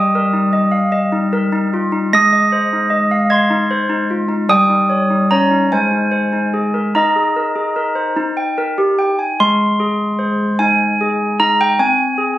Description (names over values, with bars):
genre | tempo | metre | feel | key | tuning
classical, lullaby for handbells | 50 BPM (dotted quarters) | 6/8 | straight | Ab major | A4 = 440 Hz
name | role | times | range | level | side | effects
handbells | solo | 0.0-12.4 s | G3 to Bb6 | -13 LUFS | equal | none
room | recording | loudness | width
light reverb | recorded on a phone in the room, studio reverb, compression | -13 LUFS | side -14 dB against mid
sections
0.0-9.4 A section; 9.4-12.4 B section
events
none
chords
0.0 Eb/G; 2.1 Ab; 4.5 Eb7/G; 5.7 Ab; 6.9 Ebsus4; 8.2 Eb; 9.4 Ab; 11.8 Ab/C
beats
0.92 | 2.13 3.32 | 4.50 5.70 | 6.93 8.17 | 9.40 10.61 | 11.80